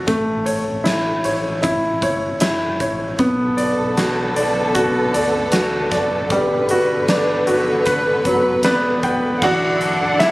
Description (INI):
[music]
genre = pop ballad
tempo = 77 BPM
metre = 4/4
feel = straight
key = B minor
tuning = A4 = 440 Hz
[part]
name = clear concert grand piano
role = accompaniment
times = 0.0-10.3 s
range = E3 to G5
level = -18 LUFS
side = equal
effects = none
[part]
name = sub bass with octave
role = bass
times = 0.0-10.3 s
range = D1 to D2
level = -32 LUFS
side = equal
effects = none
[part]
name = huge arena drum kit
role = drums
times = 0.1-10.3 s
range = crash cymbal, hi-hat, kick drum, snare drum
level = -24 LUFS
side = equal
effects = none
[part]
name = warm studio string section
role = sustained chords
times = 3.2-10.3 s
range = D3 to F#5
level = -20 LUFS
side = equal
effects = none
[part]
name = rich chamber cello section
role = second line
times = 9.4-10.3 s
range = D3 to D4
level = -24 LUFS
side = left 1 dB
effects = none
[sound]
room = light reverb, small room ambience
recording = recorded on a phone in the room, studio reverb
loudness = -16 LUFS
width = side -19 dB against mid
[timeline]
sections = 0.0-9.4 A section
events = grand piano fill 8.3-9.4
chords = 0.1 A7; 3.2 Bm7; 6.3 Gmaj7; 9.4 Dadd9